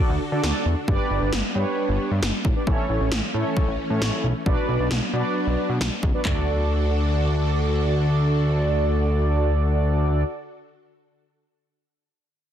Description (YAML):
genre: synth-pop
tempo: 134 BPM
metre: 4/4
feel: straight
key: D major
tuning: A4 = 440 Hz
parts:
  - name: mellow synth brass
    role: accompaniment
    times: 0.0-10.2 s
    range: C#4 to D5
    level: -26 LUFS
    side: right 2 dB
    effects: chorus
  - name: string machine, violas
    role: sustained chords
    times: 0.0-10.2 s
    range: D3 to A4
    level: -31 LUFS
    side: left 1 dB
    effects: ensemble chorus
  - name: fat analog bass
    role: bass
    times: 0.1-10.2 s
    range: G1 to D3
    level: -22 LUFS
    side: equal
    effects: none
  - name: 80s electronic pad drums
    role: drums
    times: 0.4-6.4 s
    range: handclaps, kick drum, snare drum, toms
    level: -24 LUFS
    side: equal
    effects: gated reverb on snare and toms
room: light reverb, digital ambience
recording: dense, heavily limited modern master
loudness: -20 LUFS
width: side -10 dB against mid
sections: 0.0-6.3 A section; 6.3-9.8 B section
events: none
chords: 0.0 D; 0.9 G; 2.7 A; 4.5 Bm; 6.3 D